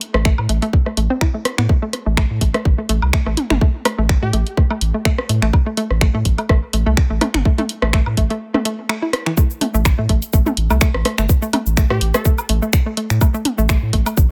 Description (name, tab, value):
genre	minimal techno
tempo	125 BPM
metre	4/4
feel	swing 55% on 16ths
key	A minor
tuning	A4 = 440 Hz
part	garage drum kit	drums	0.0-14.3 s	cabasa, finger snaps, hi-hat	-24 LUFS	equal	none
part	hollow square pluck	riff	0.1-14.1 s	E3 to E4	-26 LUFS	equal	chorus, sidechain pumping, tape echo
part	saturated sub bass	bass	0.1-14.3 s	G1 to A2	-21 LUFS	equal	sidechain pumping
part	organic electronic drum kit	percussion	0.1-14.2 s	rim click, toms, woodblock	-24 LUFS	equal	dub echo
part	electronic kick drum	drums	0.3-14.3 s	none	-17 LUFS	equal	none
part	glassy wavetable pluck	melody	4.2-4.3, 11.9-12.5 s	G4 to A4	-32 LUFS	equal	chorus, dub echo
room	little or no reverb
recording	none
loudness	-17 LUFS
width	mono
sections	0.0-9.4 A section; 9.4-14.3 B section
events	break 8.4-9.4; drop 9.4-14.3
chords	0.0 A5